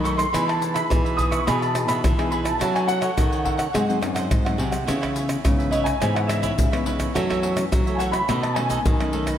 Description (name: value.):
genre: samba and choro.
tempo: 106 BPM.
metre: 4/4.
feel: straight.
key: E major, C# minor from 4.9 s.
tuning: A4 = 440 Hz.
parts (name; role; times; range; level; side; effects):
warm grand piano; melody; 0.0-9.1 s; D#5 to D#6; -26 LUFS; equal; ensemble chorus, ping-pong delay.
cavaquinho; accompaniment; 0.0-9.4 s; D#4 to F#5; -30 LUFS; right 5 dB; none.
nylon-string guitar; accompaniment; 0.0-9.4 s; F#2 to A4; -29 LUFS; left 4 dB; none.
nylon-string guitar; bass; 0.0-9.3 s; F#2 to G#3; -25 LUFS; equal; none.
egg shaker, pandeiro, tamborim and surdo; percussion; 0.1-9.4 s; none; -24 LUFS; equal; none.
room: moderate lush hall reverb, RT60 2.6 s.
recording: dreamy mix soaked in reverb.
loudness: -20 LUFS.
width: side -10 dB against mid.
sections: 0.0-4.9 A section; 4.9-9.4 B section.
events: none.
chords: 0.3 Emaj7; 2.6 F#m7; 3.7 G#7; 4.9 C#m9; 7.1 F#m7; 8.3 B9.